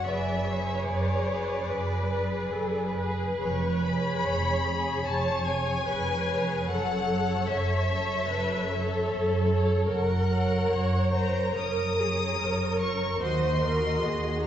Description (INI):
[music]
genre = classical, slow romantic movement for string orchestra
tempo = 74 BPM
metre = 4/4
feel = rubato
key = F# minor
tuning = A4 = 438 Hz
[part]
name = rich chamber violin section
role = melody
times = 0.0-14.5 s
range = C#5 to Eb6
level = -32 LUFS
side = left 4 dB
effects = none
[part]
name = dark chamber violin section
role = second line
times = 0.0-14.5 s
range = Gb4 to Eb5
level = -32 LUFS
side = left 1 dB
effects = none
[part]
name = warm studio cello section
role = bass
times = 0.0-14.5 s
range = Eb2 to F#2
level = -31 LUFS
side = right 2 dB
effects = none
[part]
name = warm studio viola section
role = accompaniment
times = 0.1-14.5 s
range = Gb4 to D5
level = -30 LUFS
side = equal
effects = none
[part]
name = dark chamber double bass section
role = bass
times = 0.1-14.5 s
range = E#1 to Eb2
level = -32 LUFS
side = right 1 dB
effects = none
[sound]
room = wet recital hall reverb, RT60 1.6 s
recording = heard from further back in the room, nothing above 7.8 kHz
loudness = -25 LUFS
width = side -10 dB against mid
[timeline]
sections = 0.0-14.5 A section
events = none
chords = 0.1 G#m7b5/F#; 3.4 C#7/E#; 6.7 F#m; 9.9 Gb; 13.2 Cdim/Eb